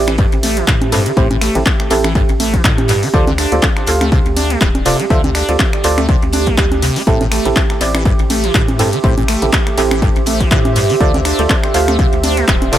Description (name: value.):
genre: acid house.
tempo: 122 BPM.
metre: 4/4.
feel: swing 56% on 16ths.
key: A minor.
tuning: A4 = 442 Hz.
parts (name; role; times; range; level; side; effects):
percussive organ stab; stabs; 0.0-12.8 s; C4 to F5; -20 LUFS; right 2 dB; chorus, dub echo.
round analog bass; bass; 0.0-12.8 s; D1 to A2; -19 LUFS; left 1 dB; tube saturation, sidechain pumping.
warbly tape-like pad; texture; 0.0-12.8 s; G4 to E5; -20 LUFS; right 5 dB; chorus, built-in reverb, sidechain pumping.
acid bass, saw; riff; 0.1-12.8 s; G2 to D4; -20 LUFS; equal; tube saturation, wide subtle chorus, dub echo.
damped 70s drum kit; drums; 0.1-12.8 s; hi-hat, snare drum; -32 LUFS; right 3 dB; none.
punchy analog drum machine; drums; 0.1-12.8 s; congas, finger snaps, handclaps, hi-hat, ride cymbal; -18 LUFS; equal; overdrive, dub echo.
electronic kick drum; drums; 0.2-12.6 s; none; -15 LUFS; left 1 dB; none.
room: light reverb.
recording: echo-heavy mix.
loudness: -11 LUFS.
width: side -12 dB against mid.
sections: 0.0-12.8 A section.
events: none.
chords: 0.0 Am7; 3.1 Dm7; 7.1 Am7; 11.0 Dm7.